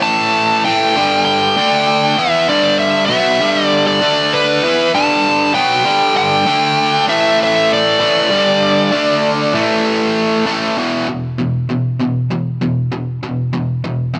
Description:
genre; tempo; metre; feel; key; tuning
rock; 98 BPM; 4/4; straight; E minor; A4 = 442 Hz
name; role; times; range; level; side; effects
dark smooth lead guitar; melody; 0.0-10.1 s; B4 to A5; -16 LUFS; equal; overdrive, digital delay
overdriven electric guitar; riff; 0.0-14.2 s; E2 to E4; -17 LUFS; equal; none
room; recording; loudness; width
light reverb; none; -14 LUFS; mono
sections
0.0-10.8 A section; 10.8-14.2 B section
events
none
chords
0.0 A5; 0.7 G5; 1.6 D5; 2.2 G5; 4.0 D5; 4.6 G5; 6.5 D5; 7.1 A5; 8.0 G5; 8.9 D5; 9.5 A5; 10.8 E5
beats
0.37 | 0.97 1.58 2.19 2.80 | 3.41 4.02 4.63 5.25 | 5.86 6.47 7.08 7.70 | 8.31 8.93 9.54 10.16 | 10.77 11.39 12.00 12.62 | 13.23 13.85

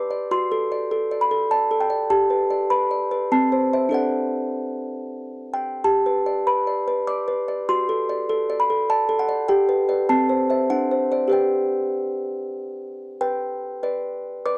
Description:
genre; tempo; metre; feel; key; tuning
classical, lullaby for music box; 98 BPM; 3/4; straight; G major; A4 = 439 Hz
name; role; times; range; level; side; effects
music box; solo; 0.0-14.6 s; C4 to D6; -20 LUFS; equal; none
room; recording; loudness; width
little or no reverb; dry, close 1970s-style studio recording; -19 LUFS; side -22 dB against mid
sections
0.0-13.2 A section; 13.2-14.6 B section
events
none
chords
0.3 D7/F#; 2.1 G; 3.3 Am/C; 3.9 D; 5.8 G; 7.7 D7/F#; 9.5 G; 10.1 Am/C; 10.7 D7; 11.3 G; 13.2 G/B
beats
| 0.30 0.91 1.50 | 2.10 2.71 3.32 | 3.94 4.58 5.21 | 5.84 6.46 7.07 | 7.68 8.29 8.89 | 9.48 10.08 10.70 | 11.32 11.95 12.57 | 13.20 13.82 14.45

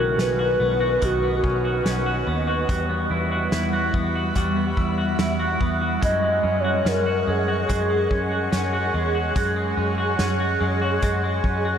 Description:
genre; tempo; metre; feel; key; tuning
dream pop; 72 BPM; 4/4; straight; unclear; A4 = 440 Hz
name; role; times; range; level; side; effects
warbly nostalgic lead; melody; 0.0-9.0 s; F#4 to D#5; -26 LUFS; equal; chorus, tremolo, analog delay
ethereal airy pad; sustained chords; 0.0-11.8 s; G3 to C#6; -28 LUFS; right 1 dB; ensemble chorus, built-in reverb, phaser
clean electric guitar; arpeggios; 0.0-11.8 s; D#3 to F#4; -25 LUFS; equal; lush chorus, analog delay
vintage muted picked electric bass; bass; 0.0-11.8 s; B1 to F#2; -26 LUFS; equal; none
loose indie drum kit; drums; 0.2-11.6 s; hi-hat, kick drum, snare drum; -28 LUFS; equal; none
room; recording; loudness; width
wet huge ambient reverb, RT60 7.7 s; dreamy mix soaked in reverb; -20 LUFS; side -8 dB against mid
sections
0.0-11.8 A section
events
none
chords
0.0 Badd9; 2.7 Emadd9; 6.0 F#sus2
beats
0.19 1.02 1.86 | 2.69 3.52 4.36 5.19 | 6.02 6.86 7.69 8.52 | 9.36 10.19 11.02

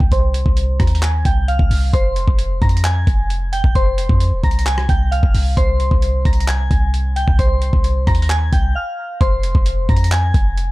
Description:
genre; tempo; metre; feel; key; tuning
hip hop, trap; 132 BPM; 4/4; half-time; unclear; A4 = 440 Hz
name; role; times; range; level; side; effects
soft synth bell; melody; 0.0-10.7 s; C5 to Bb6; -23 LUFS; equal; chorus, low-pass filter, ping-pong delay
clean 808-style bass; bass; 0.0-10.7 s; Eb1 to F2; -17 LUFS; equal; none
dusty soul sampler-style drum kit; drums; 0.0-10.7 s; handclaps, hi-hat, kick drum, rim click; -17 LUFS; equal; none
room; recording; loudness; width
little or no reverb; dark, warm production; -14 LUFS; side -20 dB against mid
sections
0.0-9.2 A section; 9.2-10.7 B section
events
filter sweep on synth bell 0.0-1.9; break 8.8-9.2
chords
0.0 Cm; 1.9 Fm; 5.6 C5; 9.2 Fm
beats
| 0.12 0.57 1.02 1.48 | 1.94 2.39 2.84 3.30 | 3.75 4.21 4.66 5.12 | 5.57 6.03 6.48 6.93 | 7.39 7.84 8.30 8.75 | 9.21 9.66 10.12 10.57

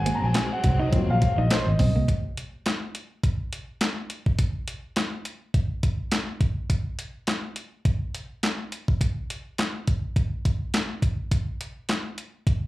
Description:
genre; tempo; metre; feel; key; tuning
early-eighties boogie funk; 104 BPM; 4/4; swing 56% on 16ths; unclear; A4 = 442 Hz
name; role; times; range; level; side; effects
dark concert grand piano; accompaniment; 0.0-2.1 s; Gb3 to Bb5; -27 LUFS; left 1 dB; slapback echo
warm studio string section; sustained chords; 0.0-2.1 s; Gb3 to C4; -34 LUFS; equal; none
vintage muted fingered electric bass; bass; 0.0-2.0 s; Ab1 to C2; -23 LUFS; equal; none
clean electric guitar; riff; 0.1-2.1 s; Bb3 to Eb4; -32 LUFS; right 4 dB; wide subtle chorus, slapback echo
crisp 8-bit digital drum machine; drums; 0.1-12.6 s; handclaps, hi-hat, kick drum, snare drum; -24 LUFS; equal; overdrive
room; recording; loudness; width
moderate club reverb, RT60 0.7 s; live gig heard through the venue's PA, club reverb; -24 LUFS; side -17 dB against mid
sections
0.0-2.1 A section; 2.1-12.7 B section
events
grand piano solo 0.0-2.1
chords
0.0 Ab13; 2.1 N.C.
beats
0.35 0.93 1.51 | 2.08 2.66 3.24 3.81 | 4.39 4.97 5.54 6.12 | 6.70 7.28 7.85 8.43 | 9.01 9.58 10.16 10.74 | 11.31 11.89 12.47

